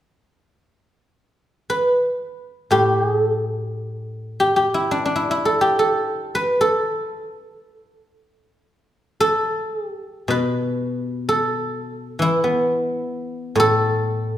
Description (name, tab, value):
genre	chinese traditional, Chinese solo plucked strings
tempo	free time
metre	none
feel	none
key	A shang mode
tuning	A4 = 440 Hz
part	guzheng	solo	1.7-14.4 s	A2 to B4	-18 LUFS	equal	none
room	wet recital hall reverb, RT60 1.4 s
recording	recorded in a church or concert hall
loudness	-18 LUFS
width	side -12 dB against mid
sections	1.2-10.3 A section; 10.3-14.4 B section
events	none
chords	none